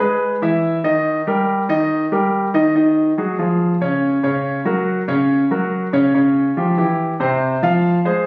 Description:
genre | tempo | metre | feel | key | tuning
jazz | 142 BPM | 4/4 | straight | unclear | A4 = 440 Hz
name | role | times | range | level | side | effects
clear concert grand piano | solo | 0.0-8.3 s | C3 to F5 | -18 LUFS | equal | none
room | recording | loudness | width
moderate studio reverb, RT60 0.7 s | recorded on a phone in the room, studio reverb | -18 LUFS | mono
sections
0.0-8.3 A section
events
none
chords
0.0 E; 1.1 Eb; 2.8 Ab5; 3.6 Db; 4.4 Gb; 6.1 C#dim; 7.0 C

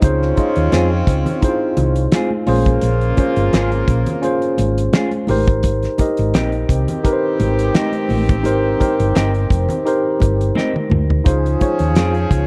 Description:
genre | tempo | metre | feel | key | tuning
lush 1970s-style soul | 86 BPM | 4/4 | swing 54% on 16ths | Ab major | A4 = 441 Hz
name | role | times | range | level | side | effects
tine electric piano | accompaniment | 0.0-12.5 s | Db4 to Eb5 | -22 LUFS | equal | none
warm horn section | stabs | 0.0-12.5 s | Db3 to Ab4 | -26 LUFS | equal | none
hollow-body short-scale fingered electric bass | bass | 0.0-12.5 s | F1 to F2 | -20 LUFS | equal | none
damped 70s drum kit | drums | 0.0-12.5 s | hi-hat, kick drum, snare drum, toms | -19 LUFS | equal | none
congas | percussion | 0.0-12.1 s | none | -28 LUFS | equal | none
electric guitar through a small old amp | riff | 0.7-12.1 s | C4 to Ab4 | -28 LUFS | equal | spring reverb
room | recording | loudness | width
small room ambience | dry, close 1970s-style studio recording | -17 LUFS | mono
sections
0.0-12.5 A section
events
drum fill 10.6-11.3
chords
0.0 Dbmaj7; 2.5 Bbm7; 5.3 Abmaj7; 11.3 Dbmaj7

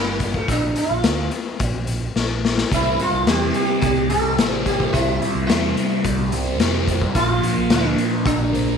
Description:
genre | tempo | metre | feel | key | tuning
psychedelic rock | 108 BPM | 4/4 | straight | C mixolydian | A4 = 440 Hz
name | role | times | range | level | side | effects
sitar | melody | 0.0-8.8 s | Bb3 to A4 | -22 LUFS | right 1 dB | slapback echo
picked electric bass | bass | 0.0-8.8 s | G1 to F2 | -25 LUFS | right 3 dB | none
raw garage drum kit | drums | 0.2-8.7 s | hi-hat, kick drum, snare drum | -22 LUFS | left 4 dB | none
thick fuzz guitar | riff | 2.7-8.8 s | Bb2 to C4 | -22 LUFS | right 1 dB | distortion, phaser
room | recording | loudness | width
light reverb, small room ambience | 1960s-style stereo | -17 LUFS | side -6 dB against mid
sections
0.0-8.8 A section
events
drum fill 2.2-2.7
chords
0.0 N.C.; 2.7 C; 7.2 Bb

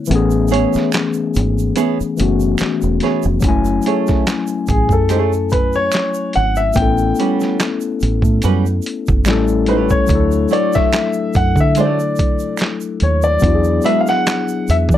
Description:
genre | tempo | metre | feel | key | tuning
R&B, neo-soul | 72 BPM | 4/4 | swing 54% on 16ths | F# minor | A4 = 440 Hz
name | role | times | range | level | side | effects
overdriven tine electric piano | accompaniment | 0.0-15.0 s | E3 to G#5 | -18 LUFS | left 6 dB | none
deep dub fingered electric bass | bass | 0.1-15.0 s | E1 to E3 | -17 LUFS | right 1 dB | none
boom bap sampler-style drum kit | drums | 0.1-15.0 s | handclaps, hi-hat, kick drum, snare drum | -19 LUFS | right 1 dB | none
tube shaker and finger snaps | percussion | 0.1-15.0 s | none | -31 LUFS | right 10 dB | none
nylon-string guitar | second line | 0.5-14.2 s | G3 to C#5 | -19 LUFS | right 9 dB | none
warm grand piano | melody | 4.7-15.0 s | G#4 to G5 | -18 LUFS | left 2 dB | slapback echo
room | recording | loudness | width
light reverb | dark, warm production | -14 LUFS | side -11 dB against mid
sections
0.0-3.4 A section; 3.4-15.0 B section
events
kick muted 0.1-3.4; grand piano solo 3.4-15.0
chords
0.1 Amaj9; 3.4 F#m9; 6.8 A13; 9.3 A7; 10.1 Dmaj9; 13.4 E9

